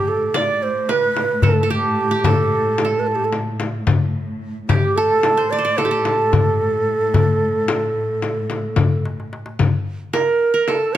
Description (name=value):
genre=Turkish makam ensemble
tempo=220 BPM (eighths)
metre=9/8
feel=straight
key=A makam ussak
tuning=A4 = 440 Hz
part: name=breathy mellow ney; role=melody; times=0.0-11.0 s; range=G4 to D5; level=-19 LUFS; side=right 2 dB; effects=none
part: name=qanun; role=second line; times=0.0-11.0 s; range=G4 to D5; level=-21 LUFS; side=right 3 dB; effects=none
part: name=warm studio cello section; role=drone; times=0.0-9.6 s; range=A2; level=-27 LUFS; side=right 1 dB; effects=none
part: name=darbuka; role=percussion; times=0.3-10.8 s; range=none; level=-21 LUFS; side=left 2 dB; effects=none
part: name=frame drum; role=percussion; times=0.3-11.0 s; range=none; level=-23 LUFS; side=left 5 dB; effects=none
room=light reverb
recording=close, detailed microphones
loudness=-16 LUFS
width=side -12 dB against mid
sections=0.0-9.6 A section; 9.6-11.0 B section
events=drum fill 9.0-9.6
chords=none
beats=0.07 0.34 0.61 0.88 1.16 1.43 1.70 1.97 | 2.24 2.52 2.79 3.06 3.33 3.60 3.88 4.15 4.42 | 4.69 4.96 5.24 5.51 5.78 6.05 6.33 6.60 6.87 | 7.14 7.41 7.69 7.96 8.23 8.50 8.78 9.05 9.32 | 9.59 9.87 10.14 10.41 10.68 10.95